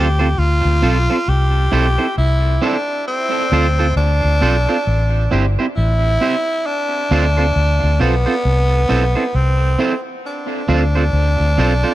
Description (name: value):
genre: dub reggae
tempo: 67 BPM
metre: 4/4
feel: swing 60% on 16ths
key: D dorian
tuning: A4 = 438 Hz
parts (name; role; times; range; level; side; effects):
- raspy tenor saxophone; melody; 0.0-11.9 s; B3 to G4; -19 LUFS; equal; tape echo
- electric guitar at the edge of break-up; accompaniment; 0.0-11.9 s; C4 to C5; -21 LUFS; right 4 dB; tape echo
- vintage muted fingered electric bass; bass; 0.0-11.8 s; G1 to D2; -15 LUFS; equal; none
room: light reverb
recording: none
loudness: -14 LUFS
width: side -15 dB against mid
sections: 0.0-11.9 A section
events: none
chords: 0.0 Dm7; 1.3 C6; 3.1 Dm7; 4.9 Am7; 6.7 Dm7; 8.4 C6; 10.2 Dm7